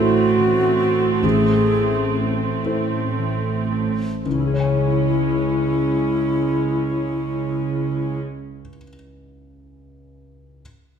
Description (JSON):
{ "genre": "cinematic, emotional film score for orchestra", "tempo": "36-50 BPM (dotted quarters)", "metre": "6/8", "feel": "rubato", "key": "C# harmonic minor", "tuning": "A4 = 439 Hz", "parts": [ { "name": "alto flute", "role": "melody", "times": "0.0-8.2 s", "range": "E4 to G#4", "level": "-21 LUFS", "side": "left 1 dB", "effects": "none" }, { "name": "dark concert grand piano", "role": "accompaniment", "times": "0.0-10.6 s", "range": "A1 to G#5", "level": "-27 LUFS", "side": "left 1 dB", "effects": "none" }, { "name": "warm studio viola section", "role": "accompaniment", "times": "0.0-8.2 s", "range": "G#3 to C#4", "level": "-26 LUFS", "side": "right 2 dB", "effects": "none" }, { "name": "concert harp", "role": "arpeggios", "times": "0.0-9.0 s", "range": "A2 to G#5", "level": "-26 LUFS", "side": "left 6 dB", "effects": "none" }, { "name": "warm studio cello section", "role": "bass", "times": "0.0-8.2 s", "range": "A2 to C#3", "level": "-24 LUFS", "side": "right 5 dB", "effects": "none" } ], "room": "light reverb", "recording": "minimal, uncompressed stereo recording", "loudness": "-18 LUFS", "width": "side -7 dB against mid", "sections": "0.0-4.2 A section; 4.2-7.4 B section", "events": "slowing down 0.0-4.2", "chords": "0.0 Am; 4.2 C#m", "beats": "| 1.23 2.65 | 4.25 5.83" }